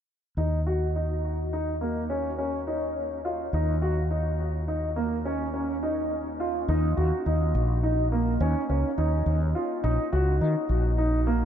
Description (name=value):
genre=progressive instrumental, progressive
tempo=209 BPM (eighths)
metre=11/8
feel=straight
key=Eb minor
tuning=A4 = 440 Hz
part: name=warm grand piano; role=arpeggios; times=0.4-11.4 s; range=Bb3 to Gb4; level=-27 LUFS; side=right 1 dB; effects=lush chorus, ping-pong delay
part: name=mellow fretless electric bass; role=bass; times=0.4-11.4 s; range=Bb1 to Eb3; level=-26 LUFS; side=equal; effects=none
room=moderate huge ambient reverb, RT60 8.4 s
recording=dreamy mix soaked in reverb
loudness=-24 LUFS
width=side -9 dB against mid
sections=0.4-6.7 A section; 6.7-11.4 B section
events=none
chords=0.4 Eb7(no3)